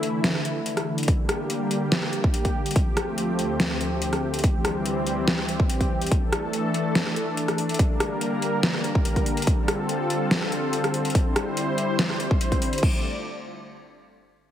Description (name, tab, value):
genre	heavy wobble dubstep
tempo	143 BPM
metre	4/4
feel	half-time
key	D minor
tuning	A4 = 441 Hz
part	lush unison pad	sustained chords	0.0-13.0 s	D2 to D5	-26 LUFS	equal	chorus, sidechain pumping
part	dubstep drum kit	drums	0.0-12.9 s	crash cymbal, hi-hat, rim click, snare drum	-26 LUFS	equal	overdrive
part	electronic kick drum	drums	1.1-12.9 s	none	-22 LUFS	equal	overdrive
room	moderate lush hall reverb, RT60 1.8 s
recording	heavily compressed radio sound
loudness	-22 LUFS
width	side -10 dB against mid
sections	0.0-12.8 A section; 12.8-14.5 B section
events	none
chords	0.0 Dsus2; 1.1 Gm/D; 2.8 Fadd9/D; 4.4 C/D; 6.1 Dsus2; 7.8 Gm/D; 9.5 Fadd9/D; 11.2 C/D; 12.8 Dm